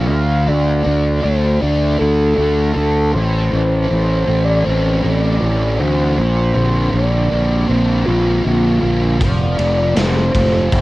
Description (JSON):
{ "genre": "rock, shoegaze and dream pop", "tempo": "79 BPM", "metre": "4/4", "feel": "straight", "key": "unclear", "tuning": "A4 = 440 Hz", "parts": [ { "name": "mellow horn-like synth lead", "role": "melody", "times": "0.0-10.8 s", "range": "F4 to F5", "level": "-20 LUFS", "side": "equal", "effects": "chorus, cassette tape, analog delay" }, { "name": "thick fuzz guitar", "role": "riff", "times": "0.0-10.8 s", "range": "A2 to D4", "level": "-20 LUFS", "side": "equal", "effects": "distortion, analog chorus, cassette tape" }, { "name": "fuzz fingered electric bass", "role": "bass", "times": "0.0-10.8 s", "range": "F1 to D2", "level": "-16 LUFS", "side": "equal", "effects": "overdrive" }, { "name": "gated 80s drum kit", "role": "drums", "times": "9.2-10.8 s", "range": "kick drum, ride cymbal, snare drum", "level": "-18 LUFS", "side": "equal", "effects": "cassette tape" } ], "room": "light reverb", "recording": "home recording on cassette", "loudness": "-13 LUFS", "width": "side -18 dB against mid", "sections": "0.0-10.8 A section", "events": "none", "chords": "0.1 D5; 3.1 Am; 6.2 Bbadd9; 9.2 F" }